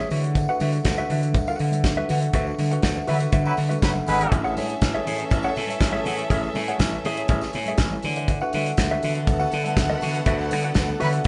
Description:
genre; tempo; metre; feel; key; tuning
disco; 121 BPM; 4/4; straight; unclear; A4 = 440 Hz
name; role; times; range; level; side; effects
mellow electric guitar; accompaniment; 0.0-11.3 s; F#4 to F#5; -31 LUFS; equal; none
glass harmonica; sustained chords; 0.0-11.3 s; A3 to G#5; -32 LUFS; equal; none
gritty slap bass; bass; 0.0-11.2 s; F#1 to D3; -28 LUFS; equal; overdrive
warm soul drum kit; drums; 0.1-11.3 s; hi-hat, kick drum, snare drum; -27 LUFS; equal; none
congas; percussion; 0.1-11.1 s; none; -39 LUFS; equal; none
tambourine; percussion; 0.1-11.3 s; none; -48 LUFS; equal; none
clear horn section; stabs; 3.1-4.4, 11.0-11.1 s; F#3 to B4; -27 LUFS; equal; none
warm studio violin section; second line; 4.3-11.3 s; B3 to F#5; -33 LUFS; equal; none
room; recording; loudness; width
moderate studio reverb, RT60 0.8 s; band playing live in one room, nothing above 10.4 kHz; -23 LUFS; mono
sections
0.0-11.3 A section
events
band accent 2.3-4.3, 10.3-11.3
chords
0.1 D69; 4.3 Amaj7; 8.0 D69

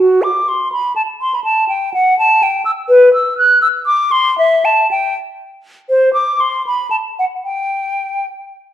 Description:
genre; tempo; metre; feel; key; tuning
classical, baroque-style fantasia for unaccompanied flute; 65-84 BPM (dotted quarters); 6/8; rubato; G major; A4 = 440 Hz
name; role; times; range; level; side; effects
hollow concert flute; solo; 0.0-8.3 s; F#4 to F#6; -12 LUFS; equal; none
room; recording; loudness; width
wet stone room reverb, RT60 1.3 s; dark, warm production; -12 LUFS; side -11 dB against mid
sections
0.0-8.7 A section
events
none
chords
none

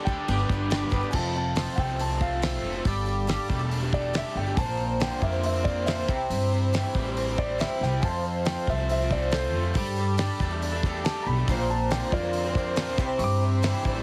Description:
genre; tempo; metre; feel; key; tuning
folk rock and heartland rock; 139 BPM; 4/4; straight; unclear; A4 = 440 Hz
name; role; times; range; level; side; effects
picked twelve-string acoustic guitar; accompaniment; 0.0-14.0 s; Bb2 to C5; -34 LUFS; equal; plate reverb
accordion; sustained chords; 0.0-1.1, 8.0-14.0 s; G4 to D6; -44 LUFS; equal; none
raw garage guitar; riff; 0.0-14.0 s; F2 to A4; -35 LUFS; equal; overdrive
warm concert grand piano; melody; 0.1-14.0 s; F4 to D6; -34 LUFS; equal; plate reverb
upright bass; bass; 0.1-14.0 s; E1 to G2; -31 LUFS; equal; none
damped 70s drum kit; drums; 0.1-14.0 s; crash cymbal, hi-hat, kick drum, snare drum; -33 LUFS; equal; none
room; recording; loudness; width
light reverb; heavily compressed radio sound, multiband compression; -26 LUFS; mono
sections
0.0-1.1 A section; 1.1-14.0 B section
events
grand piano solo 1.1-14.0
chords
0.3 G; 1.1 F; 2.9 Gsus2; 4.6 Bbadd9; 6.1 C; 8.0 F; 9.8 Gsus2; 11.5 Bbadd9; 13.0 C

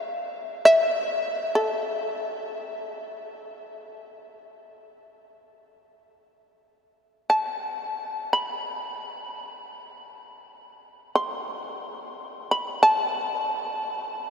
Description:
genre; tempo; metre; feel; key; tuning
japanese traditional, Japanese chamber music; free time; none; none; A hirajoshi; A4 = 437 Hz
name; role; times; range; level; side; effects
shamisen; solo; 0.0-14.3 s; A4 to C6; -23 LUFS; equal; none
room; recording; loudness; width
wet huge ambient reverb, RT60 7.8 s; in a vast, echoing space; -23 LUFS; side -8 dB against mid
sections
0.0-6.3 A section; 6.3-14.3 A section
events
none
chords
none

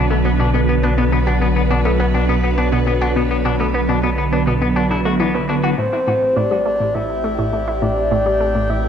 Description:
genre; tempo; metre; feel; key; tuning
ambient, sequencer-driven space music; 103 BPM; 4/4; straight; B minor, A minor from 5.8 s; A4 = 436 Hz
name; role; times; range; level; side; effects
phased string machine; sustained chords; 0.0-8.9 s; D3 to B4; -20 LUFS; right 1 dB; ensemble chorus, phaser
clean electric guitar; arpeggios; 0.0-5.7 s; B2 to F#4; -23 LUFS; left 3 dB; auto-pan, ping-pong delay
round analog bass; bass; 0.0-8.9 s; A1 to B1; -21 LUFS; right 1 dB; none
analog pluck; riff; 0.1-8.8 s; A2 to F#4; -22 LUFS; equal; chorus, ping-pong delay
breathy flute-like synth lead; melody; 5.8-8.9 s; C5 to E5; -18 LUFS; left 1 dB; chorus, ping-pong delay
bubbling stepped-filter texture; texture; 6.3-8.9 s; G4 to G5; -28 LUFS; equal; chorus, built-in reverb
room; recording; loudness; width
wet spring reverb, RT60 2.6 s; echo-heavy mix, cassette tape; -15 LUFS; side -8 dB against mid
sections
0.0-5.8 A section; 5.8-8.9 B section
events
none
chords
0.0 Bm; 5.8 Am7

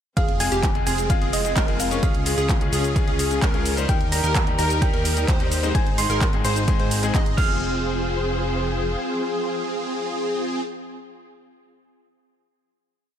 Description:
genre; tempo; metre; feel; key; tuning
EDM, festival progressive house; 129 BPM; 4/4; straight; F minor; A4 = 440 Hz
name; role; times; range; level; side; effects
thumb-piano-like synth pluck; melody; 0.2-10.6 s; Eb5 to F6; -29 LUFS; right 2 dB; chorus, tape echo
dark chamber string section; sustained chords; 0.2-10.6 s; Db3 to C5; -33 LUFS; equal; sidechain pumping
plucky unison lead; arpeggios; 0.2-10.6 s; G4 to Eb5; -30 LUFS; left 1 dB; cassette tape, sidechain pumping, tape echo
supersaw chords; riff; 0.2-10.6 s; C4 to Eb5; -28 LUFS; right 1 dB; ensemble chorus, vintage 12-bit sampler grit, sidechain pumping, tape echo
fat analog bass; bass; 0.2-9.0 s; F1 to Eb2; -26 LUFS; equal; sidechain pumping
electronic kick drum; drums; 0.2-7.5 s; none; -22 LUFS; equal; none
pop drum kit; drums; 0.2-7.5 s; crash cymbal, handclaps, hi-hat, shaker; -28 LUFS; equal; none
bright grand piano; accompaniment; 0.4-10.6 s; Ab2 to Db5; -30 LUFS; left 7 dB; sidechain pumping, tape echo
room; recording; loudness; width
little or no reverb; none; -19 LUFS; side -9 dB against mid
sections
0.2-7.6 drop; 7.6-11.3 final hit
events
drop 0.2-7.6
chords
0.2 Fm; 2.0 Db; 3.9 Eb; 5.8 Ab; 7.4 Fm

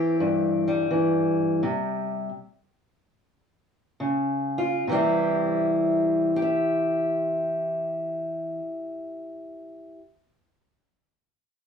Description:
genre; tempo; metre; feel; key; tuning
blues; 67-86 BPM; 4/4; swing 67% on 8ths; C major; A4 = 440 Hz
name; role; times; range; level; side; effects
fingerpicked steel-string acoustic guitar; solo; 0.0-10.0 s; G2 to E5; -23 LUFS; left 1 dB; none
room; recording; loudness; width
wet studio reverb, RT60 0.6 s; studio ambience; -23 LUFS; side -7 dB against mid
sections
0.0-4.9 A section; 4.9-8.5 B section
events
slowing down 0.0-4.9; stop 1.6-4.0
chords
0.0 C; 1.6 C5; 4.0 Db; 4.9 C

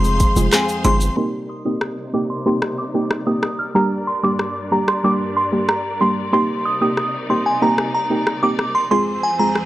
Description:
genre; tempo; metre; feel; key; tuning
dancehall; 93 BPM; 4/4; straight; unclear; A4 = 439 Hz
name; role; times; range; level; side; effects
glassy synth bell; melody; 0.0-9.5 s; Ab5 to F6; -21 LUFS; right 1 dB; chorus, low-pass filter, tape echo
soft round pluck; accompaniment; 0.0-9.5 s; G3 to Ab4; -21 LUFS; right 1 dB; chorus, sidechain pumping, low-pass filter
bright studio string section; sustained chords; 0.0-9.7 s; F2 to C6; -28 LUFS; equal; sidechain pumping, low-pass filter
nylon-string guitar; arpeggios; 0.0-1.7 s; F2 to Ab4; -23 LUFS; left 2 dB; none
hard-hitting 808-style bass; bass; 0.0-1.1 s; F1 to G1; -18 LUFS; equal; none
afro-pop drum kit; drums; 0.0-9.7 s; handclaps, hi-hat, kick drum, rim click, shaker; -20 LUFS; equal; none
tube shaker and timbales; percussion; 0.0-1.2 s; none; -30 LUFS; right 2 dB; none
room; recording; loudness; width
little or no reverb; dry, gritty hardware recording; -16 LUFS; side -15 dB against mid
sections
0.0-1.2 A section; 1.2-9.7 B section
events
filter sweep 1.2-9.7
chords
0.0 Fm; 1.2 Cm7; 3.8 Gm; 6.3 Cm7; 8.9 Fm

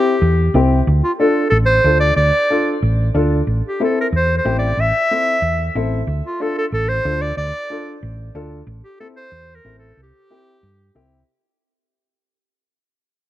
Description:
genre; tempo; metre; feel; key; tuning
latin; 184 BPM; 4/4; straight; D minor; A4 = 440 Hz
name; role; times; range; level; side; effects
clear clarinet; melody; 0.0-11.1 s; F4 to E5; -18 LUFS; equal; none
dark upright piano; accompaniment; 0.0-11.2 s; C4 to A4; -21 LUFS; left 2 dB; none
hollow-body short-scale fingered electric bass; bass; 0.2-11.2 s; A1 to G2; -18 LUFS; equal; none
room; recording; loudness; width
light reverb; none; -14 LUFS; side -14 dB against mid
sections
0.9-11.3 A section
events
fade-out 0.9-11.3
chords
0.0 C; 0.9 Dm; 3.5 Am; 6.1 Dm; 8.7 Am; 10.0 C

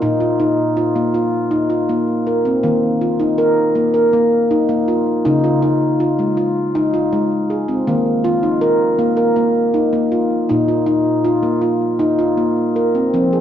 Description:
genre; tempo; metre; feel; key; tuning
world meditative, meditative tuned percussion; 160 BPM (eighths); 7/8; straight; unclear; A4 = 440 Hz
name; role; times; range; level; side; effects
handpan; solo; 0.0-13.4 s; Bb2 to Bb4; -14 LUFS; equal; tape echo
room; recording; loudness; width
wet concert hall reverb, RT60 2.3 s; dark, warm production; -14 LUFS; side -10 dB against mid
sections
0.0-13.1 A section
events
none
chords
0.0 Bb5; 2.6 Eb5; 5.3 Db; 7.9 Eb5; 10.5 Bb5

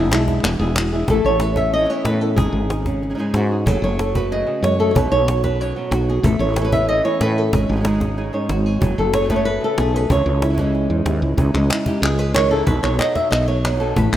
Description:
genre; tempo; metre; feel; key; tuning
flamenco; 186 BPM; 4/4; straight; C# minor; A4 = 439 Hz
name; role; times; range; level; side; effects
flamenco guitar; melody; 0.0-14.2 s; G#2 to E5; -19 LUFS; equal; none
flamenco guitar; stabs; 0.0-14.0 s; B2 to G#4; -29 LUFS; right 3 dB; none
woody fretless electric bass; bass; 0.0-14.2 s; E1 to A2; -20 LUFS; equal; none
cajon; percussion; 0.1-14.1 s; none; -24 LUFS; equal; none
palmas hand claps; percussion; 0.1-0.9, 11.5-14.2 s; none; -25 LUFS; left 1 dB; none
room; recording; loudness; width
moderate lush hall reverb, RT60 2.8 s; rough home demo mix; -16 LUFS; side -12 dB against mid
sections
0.0-1.1 A section; 1.1-11.4 B section; 11.4-14.2 C section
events
nylon-string guitar solo 11.4-14.2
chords
0.0 E7; 1.1 Aadd9; 2.4 G#sus4; 3.7 F#madd9; 5.0 Bsus2; 6.2 Aadd9; 7.5 G#sus4; 8.8 F#madd9; 10.1 C#madd9; 12.7 B

